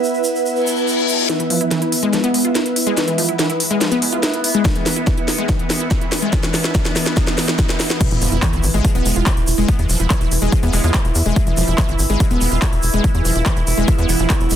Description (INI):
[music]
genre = psychedelic trance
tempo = 143 BPM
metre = 4/4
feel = straight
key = E major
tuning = A4 = 439 Hz
[part]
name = overtone-sweeping drone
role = sustained chords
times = 0.0-14.6 s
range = B3 to E4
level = -24 LUFS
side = right 3 dB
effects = chorus, built-in reverb, sidechain pumping
[part]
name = tube shaker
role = percussion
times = 0.0-1.3, 8.0-14.6 s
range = none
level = -28 LUFS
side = right 2 dB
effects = none
[part]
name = ethereal airy pad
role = texture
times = 0.0-14.6 s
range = E4 to E5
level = -25 LUFS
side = equal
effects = ensemble chorus, built-in reverb, sidechain pumping
[part]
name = reverse cymbal, riser and sub drop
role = sound effects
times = 0.6-9.7 s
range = none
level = -27 LUFS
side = left 2 dB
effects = none
[part]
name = wide unison pluck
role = riff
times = 1.3-14.6 s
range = E3 to F4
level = -22 LUFS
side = moving between left 5 dB and right 3 dB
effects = auto-pan, sidechain pumping, ping-pong delay
[part]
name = techno drum kit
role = drums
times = 1.3-14.6 s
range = crash cymbal, handclaps, hi-hat, snare drum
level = -21 LUFS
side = equal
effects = overdrive
[part]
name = electronic kick drum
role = drums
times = 4.7-14.4 s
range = none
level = -18 LUFS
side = equal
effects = overdrive
[part]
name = tight sequencer bass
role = bass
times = 8.1-14.6 s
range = E1 to E2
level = -18 LUFS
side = equal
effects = none
[part]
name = metallic wobble bass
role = second line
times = 9.7-10.9 s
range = G#3 to B3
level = -32 LUFS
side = left 4 dB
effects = lush chorus, sidechain pumping, high-pass filter, tape echo
[sound]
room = light reverb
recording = dense, heavily limited modern master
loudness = -15 LUFS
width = side -10 dB against mid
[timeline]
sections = 0.0-1.3 A section; 1.3-8.0 B section; 8.0-14.6 C section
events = reverse cymbal 0.6-1.3; build-up 1.3-8.0; drum fill 1.3-8.0; drop 8.0-14.6; impact 8.0-9.7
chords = 0.0 E5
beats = 0.04 0.45 0.87 | 1.29 1.71 2.13 2.55 | 2.97 3.39 3.81 4.23 | 4.65 5.07 5.49 5.91 | 6.33 6.75 7.17 7.59 | 8.01 8.43 8.85 9.27 | 9.69 10.10 10.52 10.94 | 11.36 11.78 12.20 12.62 | 13.04 13.46 13.88 14.30